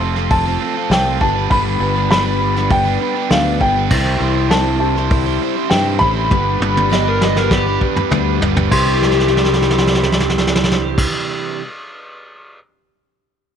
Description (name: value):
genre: folk rock and heartland rock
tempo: 100 BPM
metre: 4/4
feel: straight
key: C major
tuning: A4 = 440 Hz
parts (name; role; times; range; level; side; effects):
- dark grand piano; melody; 0.0-11.1 s; F5 to C6; -20 LUFS; left 1 dB; none
- picked twelve-string acoustic guitar; accompaniment; 0.0-11.7 s; G2 to B4; -22 LUFS; left 14 dB; none
- bright tonewheel organ; sustained chords; 0.0-11.1 s; D4 to C5; -30 LUFS; right 13 dB; none
- overdriven electric guitar; riff; 0.0-11.6 s; C3 to C5; -21 LUFS; right 13 dB; none
- modern bright fingered electric bass; bass; 0.0-11.1 s; F1 to G2; -19 LUFS; equal; none
- soft brush drum kit; drums; 0.2-12.6 s; crash cymbal, hi-hat, kick drum, snare drum, toms; -19 LUFS; equal; none
- overdriven slide guitar; second line; 6.9-11.1 s; G4 to Eb5; -22 LUFS; left 1 dB; none
room: small room ambience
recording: 1960s-style stereo with parts hard left and right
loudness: -13 LUFS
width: side -8 dB against mid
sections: 0.0-8.7 A section; 8.7-11.1 B section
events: drum fill 6.3-8.7, 9.0-11.0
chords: 0.0 F; 1.2 G; 3.9 Cadd9; 6.3 G; 8.7 Cadd9